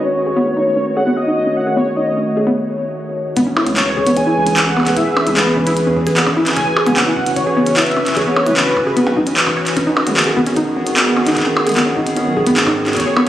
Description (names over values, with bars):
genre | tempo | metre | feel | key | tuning
IDM | 150 BPM | 4/4 | straight | C# minor | A4 = 440 Hz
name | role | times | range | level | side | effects
warm velvety synth lead | melody | 0.0-8.9, 13.0-13.3 s | B4 to G#5 | -20 LUFS | equal | chorus, digital delay
warbly tape-like pad | sustained chords | 0.0-13.3 s | D#3 to C#5 | -19 LUFS | equal | chorus, built-in reverb
warbly dusty pluck | arpeggios | 0.1-13.3 s | B3 to C#5 | -18 LUFS | equal | chorus, digital delay
round analog bass | bass | 3.4-13.3 s | F#1 to G#2 | -26 LUFS | equal | tube saturation
electronic kick drum | drums | 3.4-13.0 s | none | -30 LUFS | equal | none
glitchy drum kit | drums | 3.4-13.3 s | handclaps, hi-hat, percussion blips, toms | -18 LUFS | equal | digital delay
room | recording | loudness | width
moderate huge ambient reverb, RT60 7.1 s | recorded on a phone in the room, studio reverb | -13 LUFS | side -12 dB against mid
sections
0.0-3.4 A section; 3.4-13.3 B section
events
break 2.6-3.4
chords
0.2 D#m7b5; 3.4 C#m7; 6.6 F#7sus4; 9.8 G#m7